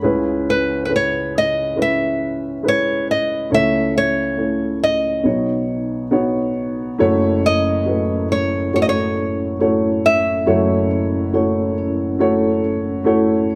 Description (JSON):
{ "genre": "acoustic folk-pop ballad", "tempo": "69 BPM", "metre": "4/4", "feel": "straight", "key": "unclear", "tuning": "A4 = 440 Hz", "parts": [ { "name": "dark upright piano", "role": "accompaniment", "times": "0.0-13.6 s", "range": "F#1 to C#5", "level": "-20 LUFS", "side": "equal", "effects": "none" }, { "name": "nylon-string guitar", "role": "melody", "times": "0.5-11.7 s", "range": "B4 to E5", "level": "-21 LUFS", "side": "equal", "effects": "none" }, { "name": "vibraphone with soft mallets", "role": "arpeggios", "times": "7.0-13.6 s", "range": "C#4 to A4", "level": "-27 LUFS", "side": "equal", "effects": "none" } ], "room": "moderate large studio reverb, RT60 1.5 s", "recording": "none", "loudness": "-18 LUFS", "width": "mono", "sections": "0.0-7.0 A section; 7.0-13.6 B section", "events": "none", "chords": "0.0 C#m7; 3.5 A/C#; 5.2 Badd9; 7.0 F#m7" }